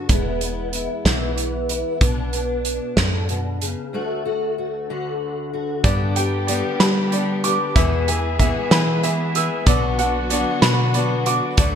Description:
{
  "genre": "indie folk with a building arrangement",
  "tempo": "63 BPM (dotted quarters)",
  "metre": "6/8",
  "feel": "straight",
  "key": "unclear",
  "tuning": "A4 = 437 Hz",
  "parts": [
    { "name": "fingerpicked steel-string acoustic guitar", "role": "accompaniment", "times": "0.0-7.8 s", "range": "D2 to F#4", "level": "-26 LUFS", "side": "left 2 dB", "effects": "ensemble chorus" },
    { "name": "woody FM bass", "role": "bass", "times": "0.1-11.8 s", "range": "E1 to G3", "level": "-23 LUFS", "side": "equal", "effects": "none" },
    { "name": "loose indie drum kit", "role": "drums", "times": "0.1-11.7 s", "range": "hi-hat, kick drum, snare drum", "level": "-20 LUFS", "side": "right 1 dB", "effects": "gated reverb" },
    { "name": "picked acoustic archtop guitar", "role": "accompaniment", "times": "5.8-11.8 s", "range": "E2 to G#4", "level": "-23 LUFS", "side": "left 6 dB", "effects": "none" },
    { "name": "clear upright piano", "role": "arpeggios", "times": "5.8-11.8 s", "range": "D5 to E6", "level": "-24 LUFS", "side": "right 4 dB", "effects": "wide subtle chorus, digital delay" },
    { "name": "warm studio string section", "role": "sustained chords", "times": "5.9-11.8 s", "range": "D3 to G#4", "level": "-29 LUFS", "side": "right 1 dB", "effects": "none" }
  ],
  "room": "moderate plate reverb, RT60 1.5 s, studio ambience",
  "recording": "bright 1980s-style digital production",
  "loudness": "-18 LUFS",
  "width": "side -8 dB against mid",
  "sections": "0.0-5.8 A section; 5.8-11.8 B section",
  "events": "break 3.9-5.8",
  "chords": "0.1 E; 2.0 Bm; 3.9 D; 5.8 G; 7.8 E; 9.7 Bm"
}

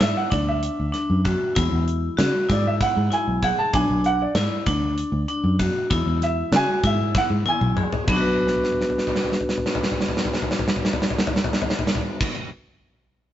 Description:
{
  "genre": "progressive instrumental, band music in an uneven meter",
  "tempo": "194 BPM (eighths)",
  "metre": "7/8",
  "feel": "straight",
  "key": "B dorian",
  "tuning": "A4 = 441 Hz",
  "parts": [
    { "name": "warm baby grand piano", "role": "accompaniment", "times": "0.0-12.3 s", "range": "B2 to A5", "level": "-26 LUFS", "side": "right 3 dB", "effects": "none" },
    { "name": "vibraphone with hard mallets", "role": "arpeggios", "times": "0.0-12.4 s", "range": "B3 to B4", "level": "-25 LUFS", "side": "left 2 dB", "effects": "none" },
    { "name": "fingered electric bass", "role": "bass", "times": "0.0-12.3 s", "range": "B1 to C#3", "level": "-24 LUFS", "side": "equal", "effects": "none" },
    { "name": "gated 80s drum kit", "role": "drums", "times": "0.0-12.4 s", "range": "crash cymbal, hi-hat, kick drum, snare drum, toms", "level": "-24 LUFS", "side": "equal", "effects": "none" }
  ],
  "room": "moderate stone room reverb, RT60 1.3 s",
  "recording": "rough rehearsal-room recording, nothing above 7.8 kHz, faint mains hum",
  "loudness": "-20 LUFS",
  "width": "side -12 dB against mid",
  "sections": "0.0-8.1 A section; 8.1-12.4 B section",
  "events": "grand piano solo 0.0-8.1; drum fill 7.2-8.1, 8.4-12.2",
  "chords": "0.0 Bm; 1.6 Eadd9; 3.7 Bm; 5.9 Eadd9; 8.1 Bm"
}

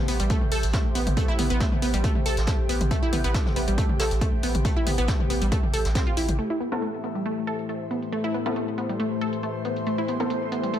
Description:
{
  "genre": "driving peak-time techno",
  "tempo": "138 BPM",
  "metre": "4/4",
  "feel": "straight",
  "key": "A minor",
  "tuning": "A4 = 440 Hz",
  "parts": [
    { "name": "airy breathy pad", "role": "texture", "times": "0.0-10.8 s", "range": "A3 to E5", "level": "-32 LUFS", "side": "left 1 dB", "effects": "chorus, phaser, sidechain pumping" },
    { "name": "wide unison pluck", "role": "riff", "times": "0.1-10.8 s", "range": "G3 to A4", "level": "-28 LUFS", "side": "equal", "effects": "tube saturation, cassette tape, sidechain pumping, ping-pong delay" },
    { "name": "saturated sub bass", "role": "bass", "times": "0.1-6.4 s", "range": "A1", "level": "-26 LUFS", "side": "equal", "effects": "tube saturation, sidechain pumping, low-pass filter" },
    { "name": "jazz brush drum kit", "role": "drums", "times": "0.1-6.3 s", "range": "hi-hat, snare drum", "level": "-36 LUFS", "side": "right 1 dB", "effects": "sidechain pumping on hats, high-pass filter on hats, high-pass filter on snare, high-pass filter on room" },
    { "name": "punchy analog drum machine", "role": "drums", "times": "0.1-10.8 s", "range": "crash cymbal, hi-hat, toms", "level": "-32 LUFS", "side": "left 2 dB", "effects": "overdrive, sidechain pumping on hats, low-pass filter on hats, sidechain pumping on toms, low-pass filter on toms, sidechain pumping on cymbals, low-pass filter on cymbals" },
    { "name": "electronic kick drum", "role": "drums", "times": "0.3-6.0 s", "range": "none", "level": "-25 LUFS", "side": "equal", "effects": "none" },
    { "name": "analog drone", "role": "drone", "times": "6.7-10.8 s", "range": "A2 to E3", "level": "-33 LUFS", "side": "left 2 dB", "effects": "chorus, sidechain pumping" },
    { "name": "rave stab", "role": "stabs", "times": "6.7-10.8 s", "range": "C4 to A4", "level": "-34 LUFS", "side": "left 3 dB", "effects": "chorus, built-in reverb, sidechain pumping, ping-pong delay" }
  ],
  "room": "light reverb, digital ambience",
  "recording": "none",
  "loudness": "-22 LUFS",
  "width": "side -10 dB against mid",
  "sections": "0.0-6.4 A section; 6.4-10.8 B section",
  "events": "filter sweep on drum 6.4-10.8; filter sweep on synth arpeggio sound 6.4-10.8",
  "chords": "0.0 Am"
}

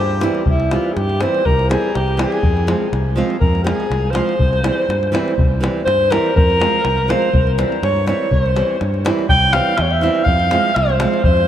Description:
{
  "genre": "balkan folk, Balkan wedding band",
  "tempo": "122 BPM",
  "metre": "2/4",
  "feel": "swing 53% on 16ths",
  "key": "C phrygian dominant",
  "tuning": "A4 = 440 Hz",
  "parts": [
    { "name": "warm alto saxophone", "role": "melody", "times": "0.0-11.5 s", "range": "E4 to G5", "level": "-18 LUFS", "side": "equal", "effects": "tape echo" },
    { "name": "fingered electric bass", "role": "bass", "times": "0.0-11.5 s", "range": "C2 to G2", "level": "-19 LUFS", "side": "equal", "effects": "none" },
    { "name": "davul", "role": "percussion", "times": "0.1-11.4 s", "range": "none", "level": "-21 LUFS", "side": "left 1 dB", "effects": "none" },
    { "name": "nylon-string guitar", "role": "accompaniment", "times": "0.2-11.2 s", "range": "E3 to F4", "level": "-22 LUFS", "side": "right 3 dB", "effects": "none" }
  ],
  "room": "wet cathedral reverb, RT60 6.3 s",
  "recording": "in a vast, echoing space",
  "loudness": "-14 LUFS",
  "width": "side -10 dB against mid",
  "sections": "0.5-11.5 A section",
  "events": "alto saxophone solo 0.5-11.5",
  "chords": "0.5 C; 2.4 Fm; 4.4 C; 6.4 Fm; 7.3 C; 10.3 Fm"
}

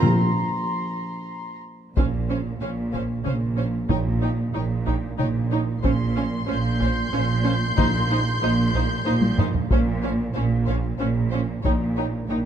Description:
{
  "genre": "cinematic, suspense film score",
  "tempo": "93 BPM",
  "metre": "3/4",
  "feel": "straight",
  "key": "unclear",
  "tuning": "A4 = 440 Hz",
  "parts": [
    { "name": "warm symphonic violin section", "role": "melody", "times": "0.0-12.4 s", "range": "F5 to G5", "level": "-44 LUFS", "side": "left 1 dB", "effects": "none" },
    { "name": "timpani", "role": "percussion", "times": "0.0-1.0, 7.8-8.7 s", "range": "Bb2", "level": "-24 LUFS", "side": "left 1 dB", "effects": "none" },
    { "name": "warm symphonic violin section", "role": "texture", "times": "0.0-1.6, 5.8-9.4 s", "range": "Bb5 to G6", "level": "-28 LUFS", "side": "equal", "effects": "none" },
    { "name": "warm symphonic violin section", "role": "second line", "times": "2.0-12.4 s", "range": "C5 to Db5", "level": "-35 LUFS", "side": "right 2 dB", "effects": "none" },
    { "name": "warm symphonic viola section", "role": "accompaniment", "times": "2.0-12.4 s", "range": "Db4 to Eb4", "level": "-29 LUFS", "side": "right 1 dB", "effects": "none" },
    { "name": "warm symphonic cello section", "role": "bass", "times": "2.0-12.5 s", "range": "Bb2", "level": "-26 LUFS", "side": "right 2 dB", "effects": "none" },
    { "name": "warm symphonic double bass section", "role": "bass", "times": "2.0-12.5 s", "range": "Bb1", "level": "-27 LUFS", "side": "right 4 dB", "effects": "none" },
    { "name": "taiko ensemble", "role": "drums", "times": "2.0-12.3 s", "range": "none", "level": "-24 LUFS", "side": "equal", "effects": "none" }
  ],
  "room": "moderate recital hall reverb, RT60 1.7 s",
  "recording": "none",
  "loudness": "-21 LUFS",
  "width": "side -9 dB against mid",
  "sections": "0.0-2.0 A section; 2.0-12.5 B section",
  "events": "break 0.0-2.0; drum fill 1.5-2.0, 9.2-9.7",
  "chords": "0.0 Bbsus2; 2.0 Bbmadd9; 3.9 Eb7/Bb; 5.8 Bbmadd9; 7.8 F5/Bb; 9.7 Bbmadd9; 11.6 Eb/Bb"
}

